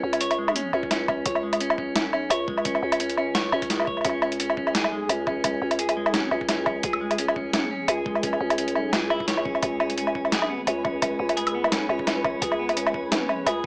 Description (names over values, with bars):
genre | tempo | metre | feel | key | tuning
half-time drum and bass | 172 BPM | 4/4 | swing 56% on 16ths, half-time | unclear | A4 = 439 Hz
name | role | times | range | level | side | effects
clean electric guitar | arpeggios | 0.0-13.7 s | G#3 to C#5 | -32 LUFS | equal | tape echo
growling 808-style bass | bass | 0.0-13.7 s | C#2 | -32 LUFS | equal | none
boom bap sampler-style drum kit | drums | 0.1-13.5 s | hi-hat, snare drum, woodblock | -27 LUFS | equal | overdrive
electronic kick drum | drums | 0.8-13.7 s | none | -39 LUFS | equal | overdrive
flickering grainy texture | texture | 4.5-13.7 s | G#3 to B4 | -37 LUFS | equal | built-in reverb
room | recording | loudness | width
light reverb | small speaker sound | -25 LUFS | mono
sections
0.0-13.7 A section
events
none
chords
0.0 C#5